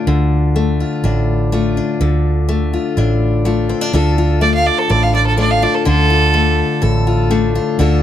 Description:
honky-tonk and classic country; 124 BPM; 4/4; straight; D minor; A4 = 440 Hz
picked steel-string acoustic guitar; accompaniment; 0.0-8.0 s; A2 to A4; -17 LUFS; left 4 dB
vintage muted fingered electric bass; bass; 0.1-8.0 s; A1 to D2; -15 LUFS; right 1 dB
clear fiddle; melody; 4.4-6.8 s; A4 to F5; -15 LUFS; right 3 dB; plate reverb
light reverb; -13 LUFS; side -10 dB against mid
0.0-3.9 A section; 3.9-8.0 B section
fiddle solo 3.9-8.0
0.0 Dm
| 0.07 0.55 1.03 1.52 | 2.00 2.48 2.97 3.45 | 3.93 4.41 4.90 5.38 | 5.86 6.34 6.82 7.31 | 7.79

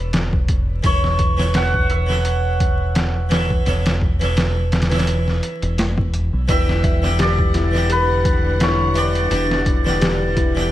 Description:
trip hop; 85 BPM; 4/4; swing 55% on 16ths; E dorian; A4 = 442 Hz
hammered dulcimer; melody; 0.0-10.7 s; B4 to F#5; -23 LUFS; equal; tape echo
harpsichord; accompaniment; 0.0-10.7 s; E3 to F#5; -24 LUFS; right 1 dB; harmonic tremolo, tape echo
deep dub fingered electric bass; bass; 0.0-10.7 s; E1 to B1; -20 LUFS; equal
trip hop sampler-style drum kit; drums; 0.1-10.7 s; hi-hat, kick drum, snare drum; -20 LUFS; equal; overdrive
clear symphonic string section; sustained chords; 6.5-10.7 s; D3 to F#5; -29 LUFS; equal
felt-muted upright piano; arpeggios; 6.5-10.7 s; D4 to E5; -25 LUFS; left 4 dB; tape echo
small room ambience; vinyl crackle; -16 LUFS; side -14 dB against mid
0.0-6.5 A section; 6.5-10.7 B section
0.0 Bm7/E; 0.8 F#m7/E; 6.5 Em9
0.13 | 0.84 1.54 2.25 2.96 | 3.66 4.37 5.07 5.78 | 6.49 7.19 7.90 8.60 | 9.31 10.02

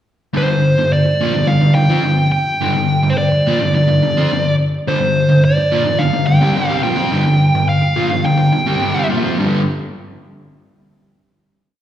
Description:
rock; 106 BPM; 4/4; straight; G minor; A4 = 440 Hz
overdriven semi-hollow guitar; riff; 0.3-9.6 s; G2 to C4; -14 LUFS; equal; slapback echo
dark smooth lead guitar; melody; 0.4-9.1 s; C5 to G5; -18 LUFS; right 1 dB; overdrive, slapback echo
light reverb, digital ambience; live gig heard through the venue's PA, recital hall reverb; -12 LUFS; side -11 dB against mid
0.4-9.4 riff; 9.4-11.6 final chord
0.4 G5
| 0.35 0.92 1.48 2.04 | 2.60 3.17 3.73 4.30 | 4.86 5.43 5.99 6.56 | 7.12 7.68 8.25 8.81 | 9.38

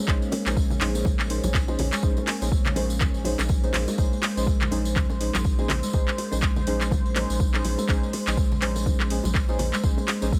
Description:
afro house; 123 BPM; 4/4; swing 57% on 16ths; Bb minor; A4 = 437 Hz
warm analog pad; sustained chords; 0.0-10.4 s; Ab3 to C5; -37 LUFS; equal; chorus, sidechain pumping
kalimba; arpeggios; 0.0-10.4 s; Ab3 to Eb4; -34 LUFS; equal; sidechain pumping, digital delay
deep mellow chord stab; stabs; 0.0-10.3 s; Db4 to C5; -35 LUFS; equal; chorus, sidechain pumping, digital delay
round analog bass; bass; 0.1-10.4 s; Bb1; -31 LUFS; equal; sidechain pumping
afro-pop drum kit; drums; 0.1-10.2 s; handclaps, hi-hat; -32 LUFS; equal; overdrive
electronic kick drum; drums; 0.1-10.4 s; -26 LUFS; equal; overdrive
tambourine; percussion; 0.1-10.4 s; -41 LUFS; equal
bongos; percussion; 0.3-10.3 s; -38 LUFS; equal
congas; percussion; 0.7-9.7 s; -37 LUFS; equal
little or no reverb; -24 LUFS; mono
0.0-10.4 A section
0.0 Bbm11
| 0.08 0.57 1.06 1.54 | 2.03 2.52 3.01 3.50 | 3.98 4.47 4.96 5.45 | 5.93 6.42 6.91 7.40 | 7.89 8.37 8.86 9.35 | 9.84 10.32

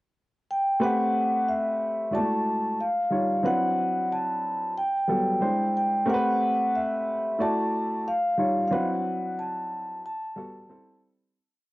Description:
R&B; 91 BPM; 4/4; swing 62% on 16ths; A dorian; A4 = 441 Hz
vibraphone with soft mallets; melody; 0.5-11.0 s; E5 to A5; -25 LUFS; equal
warm baby grand piano; accompaniment; 0.8-11.4 s; F#3 to D5; -28 LUFS; right 1 dB; cassette tape
wet spring reverb, RT60 1.6 s, small room ambience; home recording on cassette; -23 LUFS; side -19 dB against mid
0.0-0.8 pickup bar; 0.8-11.3 A section
fade-out 8.7-11.3
0.0 N.C.; 0.8 Am9; 2.1 E9sus4; 2.8 D#9; 3.4 D13; 4.7 Gmaj9; 5.4 E7alt; 6.1 Am9; 7.4 E9sus4; 8.0 D#9; 8.7 D13; 10.0 Gmaj9; 10.7 Am7
0.13 | 0.79 1.45 2.11 2.77 | 3.43 4.09 4.75 5.41 | 6.07 6.73 7.38 8.04 | 8.70 9.36 10.02 10.68

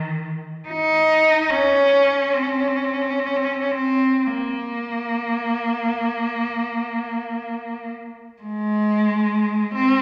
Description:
classical, free, expressive piece for unaccompanied cello; 47-73 BPM; 4/4; rubato; Bb minor; A4 = 445 Hz
rich cello; solo; 0.0-10.0 s; Eb3 to Eb4; -21 LUFS; equal
wet scoring stage reverb, RT60 1.5 s; -21 LUFS; mono
0.0-8.4 A section; 8.4-10.0 B section
| 0.68 1.50 2.34 3.27 | 4.26 5.28 6.29 7.33 | 8.44 9.33

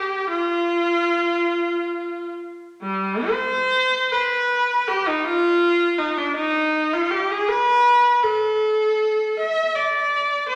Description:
classical, free, expressive piece for unaccompanied viola; 42-55 BPM (dotted quarters); 6/8; rubato; A4 = 435 Hz
clear viola; solo; 0.0-10.6 s; G3 to E5; -21 LUFS; equal
wet recital hall reverb, RT60 1.5 s; -20 LUFS; mono
0.0-10.6 A section
| 0.30 1.49 | 2.81 4.09 | 5.25 6.36 | 7.50 8.63 | 9.75

